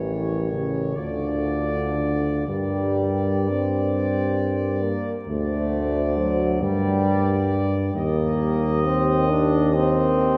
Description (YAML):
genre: classical, hymn-like piece for brass band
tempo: 38-46 BPM (dotted quarters)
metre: 6/8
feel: rubato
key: unclear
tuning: A4 = 439 Hz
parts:
  - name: bright trumpet section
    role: melody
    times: 0.0-10.4 s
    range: C#5 to Eb5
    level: -33 LUFS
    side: equal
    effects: none
  - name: dark French horn section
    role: second line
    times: 0.0-10.4 s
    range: A4 to C5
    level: -34 LUFS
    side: equal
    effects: none
  - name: warm euphonium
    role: accompaniment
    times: 0.0-10.4 s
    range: F4 to G4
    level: -34 LUFS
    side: equal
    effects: none
  - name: warm trombone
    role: accompaniment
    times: 0.0-10.4 s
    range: C#3 to D4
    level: -28 LUFS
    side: equal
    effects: none
  - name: clear tuba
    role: bass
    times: 0.0-10.4 s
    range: A1 to G2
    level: -26 LUFS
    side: equal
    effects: none
room: wet cathedral reverb, RT60 4.2 s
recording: none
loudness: -23 LUFS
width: mono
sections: 0.0-10.4 A section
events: none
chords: 0.0 A7b9; 1.0 Dm; 2.5 Gm; 5.3 D7; 6.6 Gm; 8.0 Eb